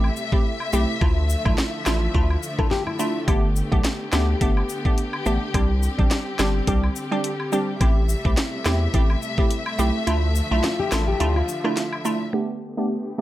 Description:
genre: dancehall.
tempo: 106 BPM.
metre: 4/4.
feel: swing 56% on 16ths.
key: unclear.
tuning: A4 = 441 Hz.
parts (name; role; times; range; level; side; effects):
glassy wavetable pluck; accompaniment; 0.0-13.2 s; G3 to G4; -25 LUFS; right 1 dB; chorus, sidechain pumping, low-pass filter.
warm studio string section; sustained chords; 0.0-13.2 s; C3 to E5; -30 LUFS; left 2 dB; sidechain pumping, low-pass filter.
saturated sub bass; bass; 0.0-11.4 s; G1 to E2; -22 LUFS; equal; none.
woodblock and cabasa; percussion; 0.0-12.2 s; none; -33 LUFS; left 2 dB; none.
island pop drum kit; drums; 0.3-11.9 s; hi-hat, kick drum, rim click, snare drum; -22 LUFS; equal; none.
nylon-string guitar; arpeggios; 2.6-3.3, 10.6-12.2 s; E4 to A4; -27 LUFS; left 4 dB; none.
room: studio reverb.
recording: none.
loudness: -20 LUFS.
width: side -14 dB against mid.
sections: 0.0-12.3 A section.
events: break 0.0-3.3; kick muted 10.1-12.3.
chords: 0.0 Am7; 1.0 Dmadd9; 3.3 Gadd9; 5.5 Csus2; 7.8 Am7; 10.1 Dmadd9; 12.3 Gadd9.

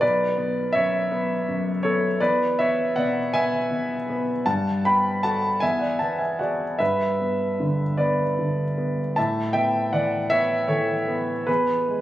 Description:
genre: classical, impressionist solo piano.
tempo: 50-55 BPM (dotted quarters).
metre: 6/8.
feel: rubato.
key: unclear.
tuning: A4 = 440 Hz.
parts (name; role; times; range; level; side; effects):
clear grand piano; solo; 0.0-12.0 s; B1 to B5; -21 LUFS; equal; none.
room: moderate recital hall reverb, RT60 1.8 s.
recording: recorded on a phone in the room, studio ambience.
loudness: -21 LUFS.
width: side -14 dB against mid.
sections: 0.0-12.0 A section.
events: none.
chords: 0.0 Bm11; 2.2 E7; 4.5 Gmaj9; 5.6 E9; 6.8 G; 9.2 Aadd9; 11.5 E.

